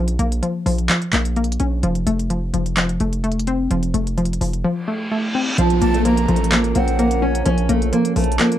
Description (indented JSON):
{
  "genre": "hip hop, trap",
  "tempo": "128 BPM",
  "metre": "4/4",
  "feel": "half-time",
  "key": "Bb harmonic minor",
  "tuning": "A4 = 440 Hz",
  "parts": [
    { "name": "hollow square pluck", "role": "accompaniment", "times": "0.0-8.6 s", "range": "F3 to Db4", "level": "-21 LUFS", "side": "left 2 dB", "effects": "chorus" },
    { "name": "hard-hitting 808-style bass", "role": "bass", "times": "0.0-8.4 s", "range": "F1 to Bb1", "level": "-21 LUFS", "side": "equal", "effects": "none" },
    { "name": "trap drum kit", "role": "drums", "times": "0.1-8.6 s", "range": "handclaps, hi-hat", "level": "-24 LUFS", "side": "equal", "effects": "none" },
    { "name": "reverse cymbal and downlifter", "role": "sound effects", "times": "4.8-8.6 s", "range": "none", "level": "-29 LUFS", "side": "equal", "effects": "none" },
    { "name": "fingerpicked steel-string acoustic guitar", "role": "melody", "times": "5.6-8.6 s", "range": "F3 to Db4", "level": "-20 LUFS", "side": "right 1 dB", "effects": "none" },
    { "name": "dark analog pad", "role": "sustained chords", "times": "6.4-8.6 s", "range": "F3 to Bb4", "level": "-27 LUFS", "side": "right 2 dB", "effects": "chorus" },
    { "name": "breathy jazz flute", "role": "second line", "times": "5.8-7.4 s", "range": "Gb5 to Bb5", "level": "-28 LUFS", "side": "right 2 dB", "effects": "analog delay" }
  ],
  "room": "moderate small room reverb, RT60 0.5 s",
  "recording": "cassette tape",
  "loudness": "-17 LUFS",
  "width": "side -12 dB against mid",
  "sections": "0.0-5.6 A section; 5.6-8.6 B section",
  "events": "reverse cymbal 4.8-5.6",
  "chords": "0.0 Bbm; 1.8 F; 5.6 Bbm",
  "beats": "0.43 0.90 1.36 | 1.83 2.30 2.77 3.24 | 3.71 4.18 4.64 5.11 | 5.58 6.05 6.52 6.99 | 7.46 7.93 8.39"
}